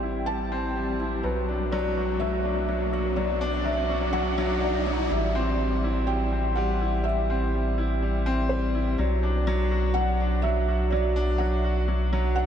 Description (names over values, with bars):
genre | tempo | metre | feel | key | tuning
piano and strings electronica | 124 BPM | 4/4 | straight | A dorian | A4 = 440 Hz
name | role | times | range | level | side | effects
felt-muted upright piano | melody | 0.0-12.5 s | B4 to A5 | -31 LUFS | equal | wide subtle chorus, analog delay
bright concert grand piano | riff | 0.0-12.5 s | F#3 to F#4 | -27 LUFS | left 1 dB | analog delay
round analog bass | bass | 0.0-12.5 s | A1 to B1 | -27 LUFS | equal | none
riser | sound effects | 0.4-5.1 s | none | -36 LUFS | right 1 dB | none
room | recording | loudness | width
moderate huge ambient reverb, RT60 8.5 s | dreamy mix soaked in reverb | -23 LUFS | side -9 dB against mid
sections
0.0-5.1 A section; 5.1-12.5 B section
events
build-up 0.0-5.1; riser 0.4-5.1; drop 5.1-12.5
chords
0.0 Am7; 1.2 Bm; 5.1 Am7; 9.0 Bm